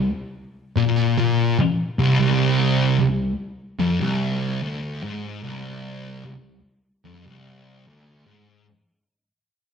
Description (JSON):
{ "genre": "metal", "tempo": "74 BPM", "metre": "4/4", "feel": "straight", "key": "unclear", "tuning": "A4 = 440 Hz", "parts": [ { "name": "thick fuzz guitar", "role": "solo", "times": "0.0-8.7 s", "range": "C2 to Bb2", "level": "-20 LUFS", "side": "equal", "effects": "distortion" } ], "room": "wet stone room reverb, RT60 1.4 s", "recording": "band playing live in one room", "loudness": "-19 LUFS", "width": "side -6 dB against mid", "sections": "0.0-8.7 A section", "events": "fade-out 0.0-8.7", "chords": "none", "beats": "0.57 1.38 | 2.19 3.00 3.81 4.62 | 5.43 6.24 7.05 7.86" }